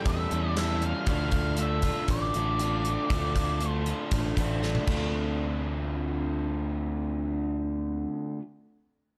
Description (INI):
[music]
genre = rock, shoegaze and dream pop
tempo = 118 BPM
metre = 4/4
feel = straight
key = D minor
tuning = A4 = 440 Hz
[part]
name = octave-fuzz lead guitar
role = melody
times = 0.0-4.6 s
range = D5 to F5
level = -35 LUFS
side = equal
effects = distortion, slapback echo
[part]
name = picked twelve-string acoustic guitar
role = arpeggios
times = 0.0-8.4 s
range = E3 to G4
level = -41 LUFS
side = equal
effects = lush chorus, slapback echo
[part]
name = crunchy overdriven guitar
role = riff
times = 0.0-8.4 s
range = D3 to F4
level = -37 LUFS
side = equal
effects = reverse reverb
[part]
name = raw garage guitar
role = riff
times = 0.0-8.4 s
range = A2 to A4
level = -37 LUFS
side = equal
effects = overdrive, subtle chorus
[part]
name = picked electric bass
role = bass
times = 0.1-8.1 s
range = A1 to E2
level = -33 LUFS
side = equal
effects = none
[part]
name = gated 80s drum kit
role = drums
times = 0.1-5.0 s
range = crash cymbal, hi-hat, kick drum, snare drum, toms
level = -33 LUFS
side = equal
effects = none
[sound]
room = small room reverb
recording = dark, warm production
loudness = -29 LUFS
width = mono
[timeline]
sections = 0.0-5.1 A section; 5.1-9.2 B section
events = drum fill 4.6-5.1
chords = 0.0 A7; 1.1 Dm7